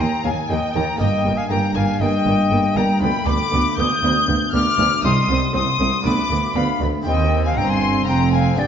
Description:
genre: classical, baroque-style concerto movement with solo episodes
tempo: 119 BPM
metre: 4/4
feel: straight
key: Eb major, C minor from 3.0 s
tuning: A4 = 443 Hz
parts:
  - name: rich studio violin section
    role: melody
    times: 0.0-8.7 s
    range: G5 to G6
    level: -26 LUFS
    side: left 4 dB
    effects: none
  - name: silver concert flute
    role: melody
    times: 0.0-8.7 s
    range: D5 to Eb6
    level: -23 LUFS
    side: left 3 dB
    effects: none
  - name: rich chamber violin section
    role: second line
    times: 0.0-8.7 s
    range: G5 to G6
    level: -26 LUFS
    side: left 5 dB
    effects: none
  - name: harpsichord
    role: accompaniment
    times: 0.0-8.7 s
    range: C2 to C5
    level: -25 LUFS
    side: equal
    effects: none
  - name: rich studio viola section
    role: accompaniment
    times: 0.0-8.7 s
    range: Bb3 to C4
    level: -24 LUFS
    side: right 2 dB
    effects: none
  - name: warm chamber cello section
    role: bass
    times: 0.0-8.7 s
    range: C2 to G2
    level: -25 LUFS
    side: right 3 dB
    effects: none
  - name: warm chamber double bass section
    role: bass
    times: 0.0-8.7 s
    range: F1 to Eb2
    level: -24 LUFS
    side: right 2 dB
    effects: none
room: wet scoring stage reverb, RT60 1.4 s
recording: dark, warm production, nothing above 7.5 kHz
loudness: -16 LUFS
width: side -8 dB against mid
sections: 0.0-8.7 A section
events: none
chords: 0.0 Eb5; 1.0 Eb/G; 3.0 G7/D; 5.0 Cm; 6.1 Bdim/D; 7.1 Cm/Eb; 8.1 Fm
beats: 0.50 | 1.00 1.50 2.01 2.51 | 3.02 3.52 4.03 4.53 | 5.04 5.54 6.05 6.56 | 7.06 7.57 8.08 8.59

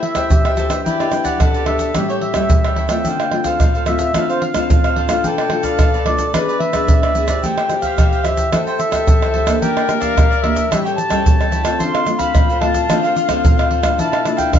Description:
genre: samba and choro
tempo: 110 BPM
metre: 4/4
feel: straight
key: A minor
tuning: A4 = 440 Hz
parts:
  - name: mellow accordion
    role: melody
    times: 0.0-14.6 s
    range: C5 to C6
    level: -21 LUFS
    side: right 1 dB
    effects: plate reverb
  - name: breathy tenor saxophone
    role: second line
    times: 0.0-14.6 s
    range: D4 to B4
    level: -22 LUFS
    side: left 8 dB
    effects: none
  - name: cavaquinho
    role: accompaniment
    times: 0.0-14.6 s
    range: D4 to G5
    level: -25 LUFS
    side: right 2 dB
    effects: none
  - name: nylon-string guitar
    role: accompaniment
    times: 0.0-14.6 s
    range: A2 to C5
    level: -23 LUFS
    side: left 1 dB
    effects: none
  - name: pandeiro, tube shaker, surdo and tamborim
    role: percussion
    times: 0.0-14.6 s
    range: none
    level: -16 LUFS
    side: right 1 dB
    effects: none
room: moderate studio reverb, RT60 0.6 s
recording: nothing above 7.5 kHz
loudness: -14 LUFS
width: side -9 dB against mid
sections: 0.0-14.6 A section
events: none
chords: 0.0 Am7; 0.9 Em7; 2.0 A7; 3.1 Dm7; 5.2 Bm7b5; 6.3 E7; 7.4 Am7; 9.6 Em7b5; 10.7 A7; 11.8 Dm7; 14.0 Bm7b5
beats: 0.31 | 0.86 1.41 1.96 2.51 | 3.06 3.60 4.15 4.70 | 5.25 5.79 6.34 6.89 | 7.44 7.98 8.53 9.08 | 9.62 10.17 10.72 11.26 | 11.81 12.36 12.90 13.45 | 13.99 14.54

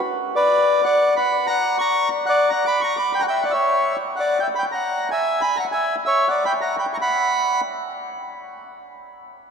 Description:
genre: tango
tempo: 190 BPM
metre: 3/4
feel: rubato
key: B harmonic minor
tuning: A4 = 440 Hz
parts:
  - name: bandoneon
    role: solo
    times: 0.4-7.6 s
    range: B4 to D6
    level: -18 LUFS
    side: equal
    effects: none
room: wet cathedral reverb, RT60 6.5 s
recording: recorded in a church or concert hall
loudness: -18 LUFS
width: side -6 dB against mid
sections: 0.4-8.0 A section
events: none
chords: 0.4 Bm; 1.3 F#; 2.3 Bm; 3.2 F#5; 4.2 G5; 5.1 E; 6.1 F#; 7.0 N.C.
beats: 0.05 | 0.37 0.69 1.00 | 1.32 1.64 1.95 | 2.27 2.58 2.90 | 3.21 3.53 3.84 | 4.16 4.48 4.79 | 5.11 5.42 5.74 | 6.06 6.37 6.69 | 7.00 7.32

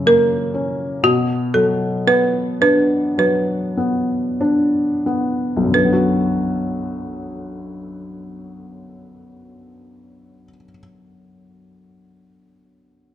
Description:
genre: children's music, lullaby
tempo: 43-63 BPM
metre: 4/4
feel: rubato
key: B minor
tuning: A4 = 440 Hz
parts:
  - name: folk marimba with hard mallets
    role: melody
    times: 0.0-10.6 s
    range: F#4 to B4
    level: -17 LUFS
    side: right 2 dB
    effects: none
  - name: felt-muted upright piano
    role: accompaniment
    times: 0.0-13.1 s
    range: B1 to F#4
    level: -19 LUFS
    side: left 1 dB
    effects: none
room: wet recital hall reverb, RT60 1.4 s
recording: dark, warm production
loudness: -16 LUFS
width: side -11 dB against mid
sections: 0.0-5.7 A section; 5.7-11.2 B section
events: slowing down 0.0-5.7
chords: 0.0 F#; 1.0 Bm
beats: 0.06 | 1.03 2.06 3.17 4.40 | 5.74 7.12 8.47 9.82

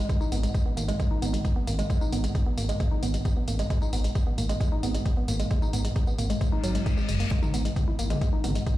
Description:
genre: driving peak-time techno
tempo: 133 BPM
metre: 4/4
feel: straight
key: G# minor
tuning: A4 = 440 Hz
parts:
  - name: woody wave-folded pluck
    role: riff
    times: 0.0-8.7 s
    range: F#3 to E4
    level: -31 LUFS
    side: right 1 dB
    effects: chorus, sidechain pumping, tape echo
  - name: dark detuned saw bass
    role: bass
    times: 0.0-8.6 s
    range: F#1 to G#1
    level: -27 LUFS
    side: equal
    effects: tube saturation, sidechain pumping
  - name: electronic kick drum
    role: drums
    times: 0.1-8.8 s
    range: none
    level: -26 LUFS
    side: equal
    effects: overdrive
  - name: techno drum kit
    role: drums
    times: 0.1-8.8 s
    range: hi-hat, tambourine, toms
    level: -37 LUFS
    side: left 1 dB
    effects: sidechain pumping on hats, sidechain pumping on perc, sidechain pumping on toms
  - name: reverse cymbal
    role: sound effects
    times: 6.6-7.3 s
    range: none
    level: -38 LUFS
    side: left 6 dB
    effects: none
room: digital ambience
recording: played on a big sound system in a bare room, large studio reverb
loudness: -24 LUFS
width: side -15 dB against mid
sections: 0.0-8.8 A section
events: reverse cymbal 6.6-7.3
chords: 0.0 G#5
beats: | 0.09 0.55 1.00 1.45 | 1.90 2.35 2.80 3.25 | 3.70 4.15 4.61 5.06 | 5.51 5.96 6.41 6.86 | 7.31 7.76 8.21 8.66

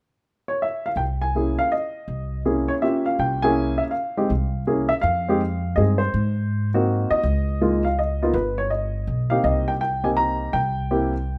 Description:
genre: jazz piano trio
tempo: 163 BPM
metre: 3/4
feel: swing 64% on 8ths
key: F minor from 5.0 s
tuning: A4 = 440 Hz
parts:
  - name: dark baby grand piano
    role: melody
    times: 0.5-11.4 s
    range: Ab3 to Bb5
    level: -24 LUFS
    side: equal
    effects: none
  - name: upright bass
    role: bass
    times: 1.0-11.4 s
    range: G1 to Ab2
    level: -27 LUFS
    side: equal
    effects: none
room: light reverb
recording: none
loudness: -23 LUFS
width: mono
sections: 0.6-5.0 A section; 5.0-11.4 B section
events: none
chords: 0.0 N.C.; 0.6 C; 5.0 Fm7; 6.1 Ab9; 7.2 Db69; 8.3 Gaug; 9.4 Cm7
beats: 0.25 | 0.62 0.99 1.35 | 1.72 2.09 2.46 | 2.83 3.19 3.56 | 3.93 4.30 4.67 | 5.03 5.40 5.77 | 6.14 6.50 6.87 | 7.24 7.61 7.97 | 8.34 8.71 9.08 | 9.45 9.81 10.18 | 10.55 10.92 11.29

